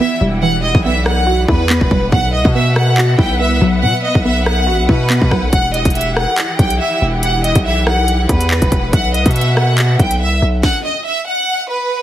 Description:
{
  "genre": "hip hop, drill",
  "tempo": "141 BPM",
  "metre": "4/4",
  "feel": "half-time",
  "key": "E harmonic minor",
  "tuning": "A4 = 440 Hz",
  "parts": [
    { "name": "clear studio violin section", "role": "melody", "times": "0.0-12.0 s", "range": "B4 to G5", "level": "-18 LUFS", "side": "equal", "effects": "none" },
    { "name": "warbly dusty pluck", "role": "accompaniment", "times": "0.0-5.5 s", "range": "B2 to F#4", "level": "-19 LUFS", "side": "right 2 dB", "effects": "chorus" },
    { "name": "warm symphonic string section", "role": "sustained chords", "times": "0.0-10.6 s", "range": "E3 to F#5", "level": "-22 LUFS", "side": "left 1 dB", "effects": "none" },
    { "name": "distorted 808-style bass", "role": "bass", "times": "0.2-10.6 s", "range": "E1 to B2", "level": "-16 LUFS", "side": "equal", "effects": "distortion" },
    { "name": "drill drum kit", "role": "drums", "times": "0.7-10.7 s", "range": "handclaps, hi-hat, kick drum, rim click, snare drum", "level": "-16 LUFS", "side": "equal", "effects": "none" }
  ],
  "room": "little or no reverb",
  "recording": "heavily compressed radio sound, multiband compression",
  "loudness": "-12 LUFS",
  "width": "side -12 dB against mid",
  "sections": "0.0-12.0 A section",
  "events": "break 0.0-5.5; stop 10.6-12.0",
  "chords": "0.0 Emadd9; 2.1 Bsus4; 5.5 Emadd9; 8.9 Bsus4"
}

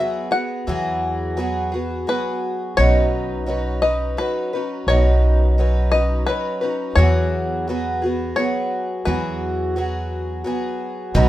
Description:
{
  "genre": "acoustic folk duo or small band",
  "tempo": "86 BPM",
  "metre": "3/4",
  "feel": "straight",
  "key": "unclear",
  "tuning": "A4 = 441 Hz",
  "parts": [
    { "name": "bluegrass banjo", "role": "melody", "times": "0.0-10.4 s", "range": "B4 to F#5", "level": "-23 LUFS", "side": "left 2 dB", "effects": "none" },
    { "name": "picked twelve-string acoustic guitar", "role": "accompaniment", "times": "0.0-11.3 s", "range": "B2 to B4", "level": "-22 LUFS", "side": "equal", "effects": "none" },
    { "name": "upright bass", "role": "bass", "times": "0.7-11.3 s", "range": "B1 to E2", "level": "-20 LUFS", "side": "equal", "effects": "none" },
    { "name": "soft brush drum kit", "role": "drums", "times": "11.2-11.3 s", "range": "hi-hat, kick drum", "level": "-20 LUFS", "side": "equal", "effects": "none" }
  ],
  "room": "light reverb",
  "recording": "minimal, uncompressed stereo recording",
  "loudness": "-18 LUFS",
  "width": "side -14 dB against mid",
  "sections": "0.0-11.2 A section",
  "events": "none",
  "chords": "0.0 Eadd9; 2.8 Badd9; 7.0 Eadd9"
}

